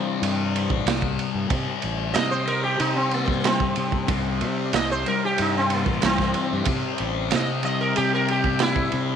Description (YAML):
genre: psychedelic rock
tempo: 93 BPM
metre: 4/4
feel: straight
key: C mixolydian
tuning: A4 = 441 Hz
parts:
  - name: sitar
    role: melody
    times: 0.0-9.2 s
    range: G2 to Eb5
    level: -25 LUFS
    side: right 2 dB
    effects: slapback echo
  - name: thick fuzz guitar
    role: riff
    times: 0.0-9.2 s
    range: C3 to C4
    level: -26 LUFS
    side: left 13 dB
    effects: distortion, phaser
  - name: fuzz fingered electric bass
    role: bass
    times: 0.2-9.2 s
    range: A1 to C3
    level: -28 LUFS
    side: equal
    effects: overdrive
  - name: crunchy breakbeat drum kit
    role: drums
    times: 0.2-9.1 s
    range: kick drum, ride cymbal, snare drum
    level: -27 LUFS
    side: right 5 dB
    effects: none
  - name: percussive tonewheel organ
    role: sustained chords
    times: 4.1-9.2 s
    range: G4 to C6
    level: -38 LUFS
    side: right 14 dB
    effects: none
room: light reverb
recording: 1960s-style stereo with parts hard left and right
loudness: -20 LUFS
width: side -8 dB against mid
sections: 0.0-9.2 A section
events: sitar solo 0.0-9.2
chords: 0.0 C